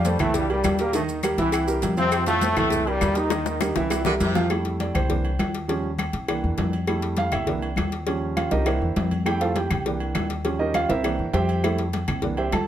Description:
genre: latin, salsa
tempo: 202 BPM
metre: 4/4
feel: straight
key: F major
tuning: A4 = 440 Hz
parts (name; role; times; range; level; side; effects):
- bright trombone section; melody; 0.0-4.3 s; G2 to E4; -24 LUFS; left 1 dB; none
- warm grand piano; accompaniment; 0.0-12.7 s; Eb3 to A5; -26 LUFS; right 3 dB; none
- upright bass; bass; 0.0-12.7 s; C2 to F2; -27 LUFS; left 1 dB; none
- cowbell and bongos; percussion; 0.0-12.7 s; none; -31 LUFS; left 7 dB; none
- congas; percussion; 0.1-12.7 s; none; -31 LUFS; left 2 dB; none
- maracas; percussion; 0.1-4.5 s; none; -38 LUFS; right 4 dB; none
- timbales and agogo bells; percussion; 0.1-12.7 s; none; -32 LUFS; right 2 dB; none
- claves; percussion; 0.2-12.7 s; none; -35 LUFS; left 5 dB; none
- clear saxophone section; second line; 4.1-4.5 s; C3 to D3; -28 LUFS; equal; none
room: light reverb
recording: close, detailed microphones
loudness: -21 LUFS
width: side -10 dB against mid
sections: 0.0-4.5 A section; 4.5-12.7 B section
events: drum fill 3.3-4.5; grand piano solo 4.5-12.7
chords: 0.3 C7; 2.1 Fmaj7; 2.7 C7; 4.5 Fmaj7; 5.1 C7; 5.7 Eb7; 6.3 C7; 6.9 Fmaj7; 7.5 C7; 8.1 Eb7; 8.7 C7; 9.3 Fmaj7; 9.9 C7; 10.4 Eb7; 11.0 C7; 11.6 Fmaj7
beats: 0.05 0.34 0.64 | 0.94 1.24 1.53 1.83 | 2.13 2.42 2.72 3.02 | 3.32 3.61 3.91 4.21 | 4.50 4.80 5.10 5.40 | 5.69 5.99 6.29 6.58 | 6.88 7.18 7.48 7.77 | 8.07 8.37 8.67 8.96 | 9.26 9.56 9.86 10.15 | 10.45 10.75 11.04 11.34 | 11.64 11.94 12.23 12.53

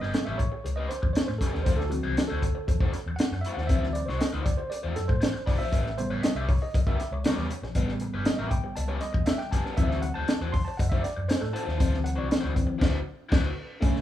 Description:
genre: funk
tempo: 118 BPM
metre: 4/4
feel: straight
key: unclear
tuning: A4 = 440 Hz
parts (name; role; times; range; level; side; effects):
- crunchy overdriven guitar; accompaniment; 0.0-14.0 s; C#4 to C#5; -35 LUFS; left 5 dB; wah
- tine electric piano; stabs; 0.0-14.0 s; C#3 to C6; -32 LUFS; right 2 dB; overdrive, fast stereo tremolo
- vintage muted fingered electric bass; bass; 0.0-14.0 s; G1 to A2; -30 LUFS; left 1 dB; none
- crunchy breakbeat drum kit; drums; 0.0-14.0 s; crash cymbal, hi-hat, kick drum, snare drum; -26 LUFS; equal; none
- cowbell; percussion; 5.7-13.9 s; none; -45 LUFS; left 2 dB; none
room: small room ambience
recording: rough home demo mix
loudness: -25 LUFS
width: side -12 dB against mid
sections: 0.0-13.8 A section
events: tine electric piano solo 0.0-13.8; band accent 12.8-13.8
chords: 0.0 A9; 1.7 D9; 5.7 A9; 9.8 D9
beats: 0.14 0.65 1.16 | 1.66 2.17 2.68 3.19 | 3.70 4.20 4.71 5.22 | 5.73 6.23 6.74 7.25 | 7.75 8.26 8.77 9.28 | 9.78 10.29 10.79 11.30 | 11.80 12.31 12.82 13.32 | 13.83

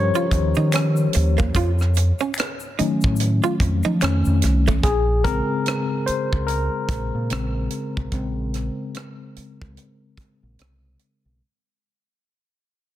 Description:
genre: R&B, neo-soul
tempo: 73 BPM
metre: 4/4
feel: swing 58% on 16ths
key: Bb dorian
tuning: A4 = 438 Hz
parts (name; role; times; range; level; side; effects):
- tine electric piano; accompaniment; 0.0-11.4 s; Db3 to Db5; -24 LUFS; left 2 dB; medium stereo tremolo
- deep dub fingered electric bass; bass; 0.0-11.4 s; Bb1 to F3; -20 LUFS; equal; none
- egg shaker and finger snaps; percussion; 0.1-4.8 s; none; -34 LUFS; left 5 dB; none
- archtop guitar, miked and amplified; second line; 0.2-4.8 s; A3 to F4; -27 LUFS; right 8 dB; none
- tight funk drum kit; drums; 0.3-11.2 s; hi-hat, kick drum, rim click; -25 LUFS; equal; soft clipping on snare
room: light reverb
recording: dense, heavily limited modern master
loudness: -19 LUFS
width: side -13 dB against mid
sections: 0.0-4.8 A section; 4.8-11.4 B section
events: tine electric piano solo 0.0-4.8, 4.8-11.4; fade-out 4.8-11.4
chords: 0.0 Eb9; 1.5 F7b9b13; 4.0 F7b13; 4.8 Bbm9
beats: 0.73 | 1.55 2.37 3.19 4.01 | 4.84 5.66 6.48 7.30 | 8.12 8.95 9.77 10.59

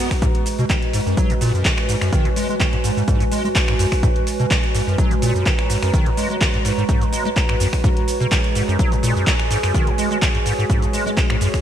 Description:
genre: acid house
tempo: 126 BPM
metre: 4/4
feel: swing 54% on 16ths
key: G# minor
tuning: A4 = 442 Hz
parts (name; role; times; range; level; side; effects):
- warbly tape-like pad; sustained chords; 0.0-11.6 s; G#3 to B4; -26 LUFS; equal; chorus, built-in reverb, phaser, sidechain pumping
- acid bass, square; riff; 0.0-11.5 s; F#2 to G#3; -22 LUFS; equal; overdrive, ensemble chorus, sidechain pumping, ping-pong delay
- warbly tape-like pad; texture; 0.0-11.6 s; F#4 to A#5; -27 LUFS; right 3 dB; chorus, built-in reverb, sidechain pumping
- booming analog drum machine; drums; 0.1-11.6 s; finger snaps, handclaps, hi-hat, shaker; -25 LUFS; equal; gated reverb
- electronic kick drum; drums; 0.1-11.6 s; none; -19 LUFS; equal; none
room: light reverb, digital ambience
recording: bright 1980s-style digital production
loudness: -16 LUFS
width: side -10 dB against mid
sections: 0.0-11.6 A section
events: none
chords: 0.0 G#m7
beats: | 0.22 0.70 1.17 1.65 | 2.13 2.60 3.08 3.55 | 4.03 4.51 4.98 5.46 | 5.93 6.41 6.89 7.36 | 7.84 8.32 8.79 9.27 | 9.74 10.22 10.70 11.17

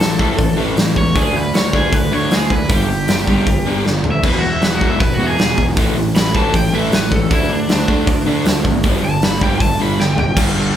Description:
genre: punk rock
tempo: 156 BPM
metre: 4/4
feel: straight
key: unclear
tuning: A4 = 441 Hz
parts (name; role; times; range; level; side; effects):
- crunchy overdriven guitar; melody; 0.0-10.4 s; D4 to B5; -21 LUFS; equal; none
- crunchy overdriven guitar; riff; 0.0-10.8 s; E2 to D4; -21 LUFS; left 4 dB; none
- crunchy overdriven guitar; riff; 0.0-10.8 s; E2 to D4; -21 LUFS; right 5 dB; none
- fuzz picked electric bass; bass; 0.0-10.7 s; E1 to E2; -23 LUFS; equal; overdrive
- big rock drum kit; drums; 0.0-10.5 s; crash cymbal, hi-hat, kick drum, snare drum, toms; -16 LUFS; equal; none
room: light reverb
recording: band playing live in one room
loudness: -13 LUFS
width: side -10 dB against mid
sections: 0.0-10.4 A section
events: overdriven electric guitar solo 0.0-10.4; drum fill 3.9-4.2, 10.0-10.4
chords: 0.0 A5; 1.2 D5; 2.7 G5; 4.2 E; 5.8 A5; 7.3 D5; 8.8 G5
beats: 0.00 0.39 0.77 | 1.16 1.54 1.93 2.31 | 2.70 3.08 3.47 3.85 | 4.24 4.62 5.01 5.39 | 5.77 6.16 6.54 6.92 | 7.31 7.69 8.07 8.46 | 8.84 9.22 9.61 9.99 | 10.37 10.75

